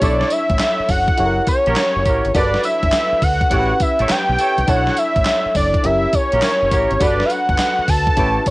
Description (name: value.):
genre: R&B, new jack swing.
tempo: 103 BPM.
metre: 4/4.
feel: swing 66% on 16ths.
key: B minor.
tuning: A4 = 438 Hz.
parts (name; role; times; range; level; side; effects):
fat analog lead; melody; 0.0-8.5 s; C#5 to A5; -17 LUFS; equal; none.
FM electric piano; accompaniment; 0.0-8.5 s; C#4 to C#5; -24 LUFS; left 1 dB; chorus, cassette tape.
mellow horn section; stabs; 0.0-8.4 s; D4 to C#5; -25 LUFS; right 2 dB; cassette tape.
deep dub fingered electric bass; bass; 0.0-8.4 s; F#1 to D2; -22 LUFS; equal; none.
gated 80s digital drum machine; drums; 0.0-8.5 s; handclaps, hi-hat, kick drum, snare drum, tambourine; -20 LUFS; equal; gated reverb, gated reverb snare, cassette tape.
room: light reverb.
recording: home recording on cassette.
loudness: -14 LUFS.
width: side -20 dB against mid.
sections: 0.0-8.5 A section.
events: none.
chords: 0.0 Bm11; 1.2 F#7b9; 2.3 Gmaj7; 3.5 A7; 4.7 Bm11; 5.8 F#7b9; 7.0 Gmaj7.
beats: | 0.02 0.60 1.18 1.76 | 2.35 2.93 3.51 4.09 | 4.68 5.26 5.84 6.42 | 7.01 7.59 8.17.